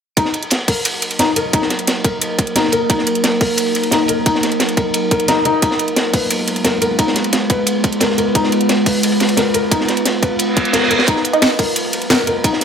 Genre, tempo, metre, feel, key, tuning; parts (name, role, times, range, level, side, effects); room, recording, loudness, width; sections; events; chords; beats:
dark technical drum and bass; 176 BPM; 4/4; straight; Eb minor; A4 = 440 Hz
metallic inharmonic drone; sustained chords; 1.0-12.6 s; Gb3 to Cb5; -19 LUFS; right 1 dB; chorus, built-in reverb, sidechain pumping
felt-muted upright piano; arpeggios; 0.2-12.5 s; Eb4 to Cb5; -20 LUFS; left 3 dB; sidechain pumping, low-pass filter, digital delay
crunchy breakbeat drum kit; drums; 0.2-12.6 s; hi-hat, ride cymbal, snare drum; -20 LUFS; equal; high-pass filter on cymbals, high-pass filter on hats, high-pass filter on snare, high-pass filter on room
drum and bass drum kit; drums; 0.2-12.6 s; hi-hat, snare drum; -18 LUFS; right 1 dB; overdrive
electronic kick drum; drums; 0.2-12.5 s; -17 LUFS; equal; overdrive, high-pass filter on kick
reverse cymbal; sound effects; 10.5-11.1 s; -18 LUFS; right 3 dB
filtered dub chord stab; stabs; 11.3-12.6 s; Eb4 to Eb5; -18 LUFS; right 3 dB; phaser, analog chorus, digital delay
moderate digital room reverb, RT60 1.1 s, small room reverb; -13 LUFS; side -7 dB against mid
0.2-12.6 A section
filter sweep on synth drone 0.2-12.6; reverse cymbal 10.5-11.1
0.2 Ebm; 5.6 Fdim; 11.1 Ebm
| 0.17 0.51 0.85 1.19 | 1.53 1.87 2.21 2.56 | 2.90 3.24 3.58 3.92 | 4.26 4.60 4.94 5.28 | 5.62 5.96 6.31 6.65 | 6.99 7.33 7.67 8.01 | 8.35 8.69 9.03 9.37 | 9.71 10.06 10.40 10.74 | 11.08 11.42 11.76 12.10 | 12.44